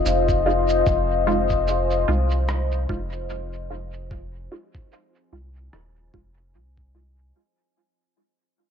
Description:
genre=ambient dub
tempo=74 BPM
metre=4/4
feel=swing 57% on 16ths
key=F minor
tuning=A4 = 441 Hz
part: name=deep dark ambient pad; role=sustained chords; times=0.0-7.4 s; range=F4 to Ab5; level=-23 LUFS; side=left 4 dB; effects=chorus, built-in reverb
part: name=soft dub sub bass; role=bass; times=0.1-7.3 s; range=Eb1 to C2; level=-25 LUFS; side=equal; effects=tube saturation
part: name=electronic cabasa and rim click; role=drums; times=0.1-7.3 s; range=none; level=-36 LUFS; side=right 3 dB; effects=low-pass filter on perc, small room ambience, low-pass filter on snare, dub echo
part: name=electronic kick drum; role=drums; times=0.3-6.9 s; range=none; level=-26 LUFS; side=equal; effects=small room ambience
part: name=filtered dub chord stab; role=stabs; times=0.5-7.2 s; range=Ab3 to F4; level=-29 LUFS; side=right 3 dB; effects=phaser, ensemble chorus, cassette tape, dub echo
room=wet spring reverb, RT60 2.3 s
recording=none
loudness=-19 LUFS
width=side -7 dB against mid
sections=0.0-7.4 A section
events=fade-out 0.0-7.4; filter sweep on drum 0.0-7.4; filter sweep on synth stab 0.0-7.4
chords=0.0 Fm7

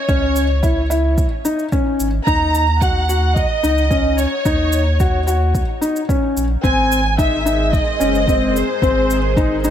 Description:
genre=piano and strings electronica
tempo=110 BPM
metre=4/4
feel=straight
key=unclear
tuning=A4 = 440 Hz
part: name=dark studio violin section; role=melody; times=0.0-9.7 s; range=B#4 to A#5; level=-20 LUFS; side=equal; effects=digital delay
part: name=felt-muted upright piano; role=riff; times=0.1-9.7 s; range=B#3 to F#4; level=-20 LUFS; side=left 2 dB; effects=digital delay
part: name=warm sub bass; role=bass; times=0.1-9.7 s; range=F#1 to D#2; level=-19 LUFS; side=equal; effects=sidechain pumping
part: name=electronic kick drum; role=drums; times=0.1-9.5 s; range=none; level=-20 LUFS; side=equal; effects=none
part: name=shaker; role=drums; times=0.1-9.7 s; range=none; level=-31 LUFS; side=right 2 dB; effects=none
part: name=lush unison pad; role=sustained chords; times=7.1-9.7 s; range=G#3 to B#4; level=-25 LUFS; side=equal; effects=chorus, phaser, sidechain pumping
room=little or no reverb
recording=none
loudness=-14 LUFS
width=side -10 dB against mid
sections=0.0-9.7 A section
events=none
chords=0.0 C#m; 2.3 D#m7; 6.6 G#add9

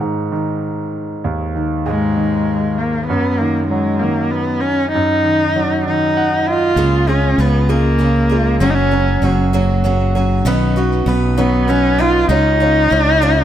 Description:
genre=six-eight pop ballad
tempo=65 BPM (dotted quarters)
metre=6/8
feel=straight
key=unclear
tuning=A4 = 440 Hz
part: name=clear concert grand piano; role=accompaniment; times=0.0-13.4 s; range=Eb2 to Gb5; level=-18 LUFS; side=right 2 dB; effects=none
part: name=warm cello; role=melody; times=1.9-13.4 s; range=Ab3 to F4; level=-16 LUFS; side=left 1 dB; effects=none
part: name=picked steel-string acoustic guitar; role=arpeggios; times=6.8-13.4 s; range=B2 to B4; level=-23 LUFS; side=left 4 dB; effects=ping-pong delay
part: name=fretless electric bass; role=bass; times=6.8-13.4 s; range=Gb1 to Db2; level=-16 LUFS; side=equal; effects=none
room=light reverb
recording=none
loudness=-13 LUFS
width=side -10 dB against mid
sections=0.0-6.8 A section; 6.8-13.4 B section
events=grand piano fill 5.9-6.8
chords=0.0 Ab5; 3.1 Ebm/Gb; 6.8 Db6; 8.6 Gbadd9; 10.5 Badd9; 12.3 Dbadd9

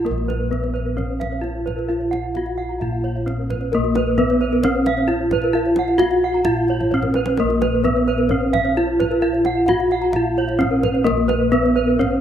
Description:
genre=Balinese gamelan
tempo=131 BPM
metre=4/4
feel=straight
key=Bb pelog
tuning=A4 = 440 Hz
part: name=gamelan-type bronze metallophone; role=melody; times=0.0-12.2 s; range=Bb3 to Gb4-40c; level=-19 LUFS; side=equal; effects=tape echo
part: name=gamelan-type bossed gongs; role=bass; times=0.0-12.2 s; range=Bb1 to Bb4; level=-25 LUFS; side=equal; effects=none
part: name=gamelan-type bronze metallophone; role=arpeggios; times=0.1-12.2 s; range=Gb4-40c to Bb5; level=-26 LUFS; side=left 7 dB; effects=none
part: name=kendang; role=percussion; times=0.1-12.1 s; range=none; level=-30 LUFS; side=right 1 dB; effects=none
part: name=gamelan-type bronze metallophone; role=arpeggios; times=0.3-11.9 s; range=Cb5 to Gb5-40c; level=-25 LUFS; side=right 7 dB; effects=none
room=light reverb, studio ambience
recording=rough home demo mix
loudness=-17 LUFS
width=side -9 dB against mid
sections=0.1-12.2 A section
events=drum fill 6.8-7.4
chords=none

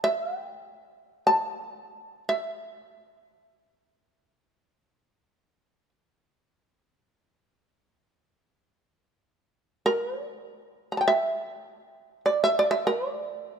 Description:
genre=japanese traditional, Japanese chamber music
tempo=free time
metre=none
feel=none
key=unclear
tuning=A4 = 442 Hz
part: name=shamisen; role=solo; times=0.0-13.6 s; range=D5 to Bb5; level=-24 LUFS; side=right 1 dB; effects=none
room=moderate concert hall reverb, RT60 2.2 s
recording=close, detailed microphones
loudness=-24 LUFS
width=side -7 dB against mid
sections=0.0-13.6 A section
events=none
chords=none

